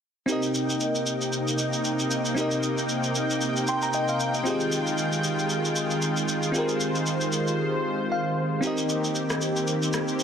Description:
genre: amapiano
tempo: 115 BPM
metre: 4/4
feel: swing 55% on 16ths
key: C minor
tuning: A4 = 439 Hz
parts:
  - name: bell-like FM electric piano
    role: accompaniment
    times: 0.3-10.2 s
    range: C4 to C6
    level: -28 LUFS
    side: equal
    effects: chorus
  - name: lush unison pad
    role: sustained chords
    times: 0.3-10.2 s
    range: C3 to G5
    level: -26 LUFS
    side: equal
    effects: chorus
  - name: electronic shaker and rim click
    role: drums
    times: 0.3-10.2 s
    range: none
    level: -31 LUFS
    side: equal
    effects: soft clipping on snare
room: light reverb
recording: dense, heavily limited modern master, lossy compression artefacts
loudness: -23 LUFS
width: side -7 dB against mid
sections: 0.3-10.2 A section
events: FM electric piano fill 3.4-4.5, 7.9-8.6; silent gap 7.6-8.6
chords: 0.3 Cm7; 4.5 Fm9; 8.6 Cm7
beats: | 0.29 0.81 1.33 1.85 | 2.37 2.90 3.42 3.94 | 4.46 4.98 5.50 6.03 | 6.55 7.07 7.59 8.11 | 8.63 9.16 9.68 10.20

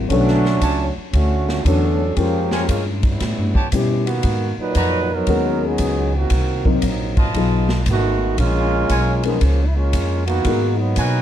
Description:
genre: jazz, big band swing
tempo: 116 BPM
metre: 4/4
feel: swing 67% on 8ths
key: unclear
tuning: A4 = 440 Hz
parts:
  - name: dark baby grand piano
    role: accompaniment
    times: 0.0-10.8 s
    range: D3 to A#4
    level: -22 LUFS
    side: left 5 dB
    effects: none
  - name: upright bass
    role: bass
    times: 0.0-11.2 s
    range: G#1 to B2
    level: -20 LUFS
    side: equal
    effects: none
  - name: clear trombone section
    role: second line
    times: 0.1-11.2 s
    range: A#2 to B4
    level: -21 LUFS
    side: right 2 dB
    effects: none
  - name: swinging big-band drum kit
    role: drums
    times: 0.1-11.1 s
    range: hi-hat, kick drum, ride cymbal, snare drum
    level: -24 LUFS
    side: equal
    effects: none
  - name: clear trumpet section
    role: stabs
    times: 0.6-11.2 s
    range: D4 to A#5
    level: -25 LUFS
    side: right 1 dB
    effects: none
room: little or no reverb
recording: dark, warm production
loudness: -16 LUFS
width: side -10 dB against mid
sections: 0.0-11.2 A section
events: trombone section solo 0.0-11.2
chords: 0.1 Bm9; 2.2 A#m7; 3.2 A9; 4.2 G#m11; 6.3 Cm7b5; 7.3 B7#11; 8.4 A#m7; 10.5 G#m9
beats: | 0.10 0.62 1.14 1.66 | 2.17 2.69 3.21 3.73 | 4.25 4.76 5.28 5.80 | 6.32 6.83 7.35 7.87 | 8.38 8.90 9.42 9.94 | 10.46 10.97

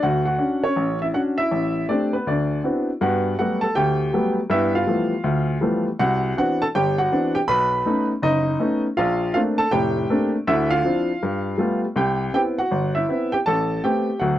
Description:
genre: solo jazz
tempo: 161 BPM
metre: 4/4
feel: swing 64% on 8ths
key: D major, G major from 3.0 s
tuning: A4 = 440 Hz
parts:
  - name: clear upright piano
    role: solo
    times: 0.0-14.4 s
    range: F1 to B5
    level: -19 LUFS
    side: equal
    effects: none
room: light reverb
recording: dry, close 1970s-style studio recording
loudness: -19 LUFS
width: side -13 dB against mid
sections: 0.0-3.0 A section; 3.0-14.4 B section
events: none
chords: 0.0 Dmaj7; 1.5 Am7; 2.3 D13; 3.0 Gmaj9; 4.5 G13; 6.0 Cmaj9; 7.5 B9; 9.0 Bbmaj9; 10.5 Dm9; 11.2 G9; 12.0 Cmaj7; 13.4 Am9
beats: | 0.02 0.39 0.77 1.14 | 1.51 1.89 2.26 2.63 | 3.00 3.38 3.75 4.12 | 4.50 4.87 5.24 5.61 | 5.99 6.36 6.73 7.11 | 7.48 7.85 8.22 8.60 | 8.97 9.34 9.72 10.09 | 10.46 10.84 11.21 11.58 | 11.96 12.33 12.70 13.07 | 13.45 13.82 14.20

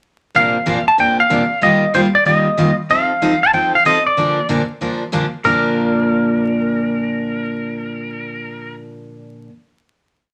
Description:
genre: country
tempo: 188 BPM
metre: 4/4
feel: swing 64% on 8ths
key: Bb major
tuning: A4 = 440 Hz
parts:
  - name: picked steel-string acoustic guitar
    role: accompaniment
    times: 0.3-9.5 s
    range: Bb2 to Bb4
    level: -20 LUFS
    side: equal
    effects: none
  - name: clean lap steel guitar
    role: melody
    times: 0.4-8.8 s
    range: Bb4 to A5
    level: -18 LUFS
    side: equal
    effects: none
room: wet studio reverb, RT60 0.7 s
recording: vinyl crackle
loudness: -16 LUFS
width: mono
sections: 0.3-5.5 A section; 5.5-8.0 final chord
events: none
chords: 0.3 Bbadd9; 1.6 Ebadd9; 2.9 F7; 4.2 Bb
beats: | 0.35 0.67 0.98 1.30 | 1.62 1.94 2.26 2.58 | 2.90 3.22 3.54 3.86 | 4.18 4.50 4.81 5.13 | 5.45 5.77 6.09 6.40 | 6.72 7.04 7.36 7.67

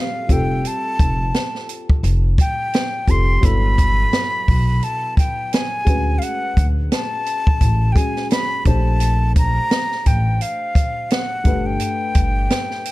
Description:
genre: hip hop, jazz-hop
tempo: 86 BPM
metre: 4/4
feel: swing 57% on 16ths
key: unclear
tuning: A4 = 440 Hz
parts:
  - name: breathy concert flute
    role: melody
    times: 0.0-12.9 s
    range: F5 to C6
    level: -23 LUFS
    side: equal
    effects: tape echo
  - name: dark upright piano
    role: accompaniment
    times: 0.0-12.9 s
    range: F#3 to C5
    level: -28 LUFS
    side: left 2 dB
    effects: none
  - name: upright bass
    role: bass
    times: 0.3-12.5 s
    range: F1 to D2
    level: -19 LUFS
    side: equal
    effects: none
  - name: open jazz drum kit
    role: drums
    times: 0.3-12.9 s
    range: hi-hat, kick drum, snare drum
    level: -18 LUFS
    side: equal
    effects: none
room: small room reverb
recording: dark, warm production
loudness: -16 LUFS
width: side -18 dB against mid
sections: 0.0-12.9 A section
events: none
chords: 0.3 Fadd9; 3.4 Gmaj9; 5.9 Dmaj7; 8.7 Bbmaj9; 11.5 Gadd9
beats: | 0.64 1.34 2.03 2.73 | 3.43 4.13 4.82 5.52 | 6.22 6.92 7.62 8.31 | 9.01 9.71 10.40 11.10 | 11.80 12.50

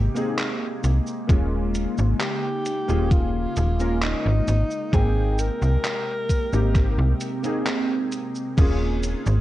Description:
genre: vaporwave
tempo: 66 BPM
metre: 4/4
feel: straight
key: Ab major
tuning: A4 = 440 Hz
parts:
  - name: warm electric grand piano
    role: accompaniment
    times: 0.0-9.4 s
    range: Ab3 to G5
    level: -28 LUFS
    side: left 1 dB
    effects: analog chorus, vintage 12-bit sampler grit, tape echo
  - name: warbly tape-like pad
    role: sustained chords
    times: 0.0-9.4 s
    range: C3 to G5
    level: -31 LUFS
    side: equal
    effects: chorus, built-in reverb, phaser, vintage 12-bit sampler grit
  - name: slap-like FM bass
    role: bass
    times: 0.0-9.4 s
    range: Eb1 to C2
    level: -21 LUFS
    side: equal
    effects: tube saturation
  - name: gated 80s digital drum machine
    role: drums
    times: 0.2-9.4 s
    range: cabasa, crash cymbal, handclaps, hi-hat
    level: -31 LUFS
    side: equal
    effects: gated reverb, overdrive, vintage 12-bit sampler grit
  - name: electronic kick drum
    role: drums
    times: 1.3-8.8 s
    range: none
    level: -20 LUFS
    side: equal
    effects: overdrive, vintage 12-bit sampler grit
  - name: breathy alto saxophone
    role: melody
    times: 2.2-7.2 s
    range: Eb4 to Bb4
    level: -29 LUFS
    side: equal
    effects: tape echo
room: little or no reverb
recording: cassette tape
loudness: -20 LUFS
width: side -15 dB against mid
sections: 0.0-8.6 A section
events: none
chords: 0.0 Abmaj9; 1.3 Eb7sus4; 4.5 Abmaj9; 8.6 Eb7sus4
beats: 0.39 | 1.30 2.21 3.12 4.03 | 4.93 5.84 6.75 7.66 | 8.57

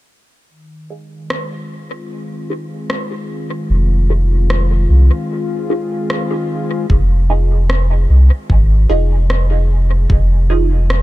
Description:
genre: ambient dub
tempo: 75 BPM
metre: 4/4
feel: swing 58% on 16ths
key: F minor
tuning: A4 = 440 Hz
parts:
  - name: warm analog pad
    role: sustained chords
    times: 0.5-11.0 s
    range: Eb3 to Ab4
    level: -24 LUFS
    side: left 2 dB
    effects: chorus
  - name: filtered dub chord stab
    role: stabs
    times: 0.9-10.8 s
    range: Eb4 to Ab4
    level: -24 LUFS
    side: right 3 dB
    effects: phaser, lush chorus, dub echo
  - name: electronic rim click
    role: drums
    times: 1.3-11.0 s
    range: none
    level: -24 LUFS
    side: equal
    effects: dub echo
  - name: warm sub bass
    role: bass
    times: 3.7-11.0 s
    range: F1 to C2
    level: -12 LUFS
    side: equal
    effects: none
  - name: electronic kick drum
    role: drums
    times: 6.9-10.3 s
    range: none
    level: -14 LUFS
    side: equal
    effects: none
room: little or no reverb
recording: dark, warm production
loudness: -12 LUFS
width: side -17 dB against mid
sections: 0.5-6.9 A section; 6.9-11.0 B section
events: filter sweep on analog synth pad 0.5-6.9; break 5.3-6.9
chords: 0.5 Fm7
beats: | 0.50 1.30 2.10 2.90 | 3.70 4.50 5.30 6.10 | 6.90 7.70 8.50 9.30 | 10.10 10.90

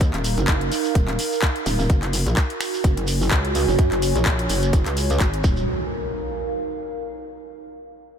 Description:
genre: bass house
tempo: 127 BPM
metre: 4/4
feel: swing 56% on 16ths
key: Eb minor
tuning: A4 = 441 Hz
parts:
  - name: metallic wobble bass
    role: bass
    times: 0.0-5.7 s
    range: Eb1 to Gb2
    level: -22 LUFS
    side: equal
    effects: chorus, tube saturation, sidechain pumping
  - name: electronic kick drum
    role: drums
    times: 0.0-5.5 s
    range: none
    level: -19 LUFS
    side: equal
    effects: none
  - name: garage drum kit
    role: drums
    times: 0.0-5.4 s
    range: finger snaps, handclaps, hi-hat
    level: -27 LUFS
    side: left 1 dB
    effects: none
  - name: shekere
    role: percussion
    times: 0.0-5.7 s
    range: none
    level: -34 LUFS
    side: right 4 dB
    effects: none
  - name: warbly tape-like pad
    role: texture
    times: 0.0-7.5 s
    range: Eb4 to Ab5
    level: -26 LUFS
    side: right 3 dB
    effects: chorus, built-in reverb, phaser, sidechain pumping
  - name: impact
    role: sound effects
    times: 5.5-7.3 s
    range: none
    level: -31 LUFS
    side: equal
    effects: none
room: light reverb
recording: none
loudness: -19 LUFS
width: side -8 dB against mid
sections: 0.0-5.7 A section; 5.7-7.6 B section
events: none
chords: 0.0 Ebm; 1.9 Gb; 5.4 Eb5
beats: | 0.01 0.48 0.95 1.43 | 1.90 2.37 2.84 3.31 | 3.79 4.26 4.73 5.20 | 5.68 6.15 6.62 7.09

